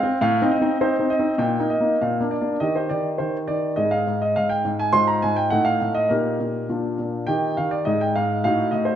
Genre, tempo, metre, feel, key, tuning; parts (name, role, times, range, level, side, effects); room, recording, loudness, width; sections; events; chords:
classical-period piano sonatina; 103 BPM; 2/4; straight; Eb major; A4 = 445 Hz
warm concert grand piano; solo; 0.0-9.0 s; Ab2 to C6; -19 LUFS; equal
wet recital hall reverb, RT60 1.6 s; -19 LUFS; side -10 dB against mid
0.0-2.6 A section; 2.6-9.0 B section
0.2 F7/A; 1.4 Eb/Bb; 2.0 Bb; 2.6 Eb; 3.8 Ab5; 4.9 Fm/Ab; 5.5 F7b9/A; 6.1 Eb/Bb; 6.7 Bb; 7.3 Eb; 7.9 Ab5; 8.4 Adim7